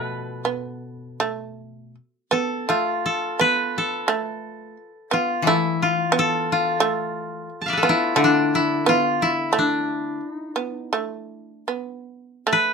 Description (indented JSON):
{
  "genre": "japanese traditional, Japanese chamber music",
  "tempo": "75-90 BPM",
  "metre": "4/4",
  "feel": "rubato",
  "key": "unclear",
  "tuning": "A4 = 440 Hz",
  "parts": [
    { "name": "koto", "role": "melody", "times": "0.0-12.7 s", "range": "D4 to A5", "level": "-21 LUFS", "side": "left 2 dB", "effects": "none" },
    { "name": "shamisen", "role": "second line", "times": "0.0-12.7 s", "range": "A3 to B3", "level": "-24 LUFS", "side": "right 6 dB", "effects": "none" },
    { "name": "koto", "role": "accompaniment", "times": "0.0-10.2 s", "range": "B2 to F3", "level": "-27 LUFS", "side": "left 5 dB", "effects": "none" }
  ],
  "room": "little or no reverb",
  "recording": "close, detailed microphones, lossy compression artefacts",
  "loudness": "-20 LUFS",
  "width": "side -5 dB against mid",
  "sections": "0.0-12.5 A section",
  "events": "none",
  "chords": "none",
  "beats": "0.46 | 1.22 1.96 2.68 3.39 | 4.08 4.76 5.45 6.13 | 6.80 7.48 8.17 8.84 | 9.52 10.19 10.91 11.68 | 12.46"
}